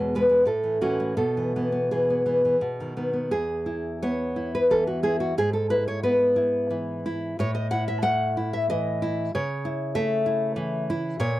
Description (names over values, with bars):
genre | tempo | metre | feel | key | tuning
romantic piece for solo classical guitar | 81-99 BPM | 3/4 | rubato | E major | A4 = 440 Hz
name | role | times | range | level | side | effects
nylon-string guitar | solo | 0.0-11.4 s | E2 to F#5 | -22 LUFS | equal | none
room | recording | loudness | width
moderate booth ambience, RT60 0.2 s | dry, close 1970s-style studio recording | -22 LUFS | side -15 dB against mid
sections
0.0-3.3 A section; 3.3-11.4 B section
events
none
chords
0.5 A; 1.2 E/B; 2.6 B; 3.3 E; 5.4 E/G#; 7.4 A5; 9.3 A/C#